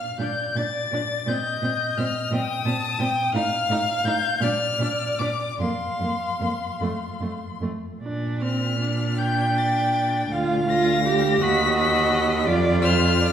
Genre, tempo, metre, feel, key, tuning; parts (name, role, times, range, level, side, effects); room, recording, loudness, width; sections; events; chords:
classical, slow romantic movement for string quartet; 48-60 BPM (dotted quarters); 6/8; rubato; Bb major; A4 = 441 Hz
warm violin; melody; 0.0-13.3 s; C6 to B6; -27 LUFS; left 6 dB
warm violin; second line; 0.0-13.3 s; C5 to A5; -26 LUFS; left 1 dB
rich viola; accompaniment; 0.2-13.3 s; A3 to G4; -27 LUFS; right 2 dB
warm cello; bass; 0.2-13.3 s; D2 to Bb2; -26 LUFS; right 2 dB
wet recital hall reverb, RT60 1.8 s; heard from further back in the room; -21 LUFS; side -9 dB against mid
0.0-13.3 A section
0.0 Bb; 1.3 Cm7/Bb; 3.3 F7; 4.4 Bb; 5.6 Fsus4; 6.8 F; 8.0 Bb; 10.3 Bb/D; 11.4 B/D#; 12.5 Dm7/F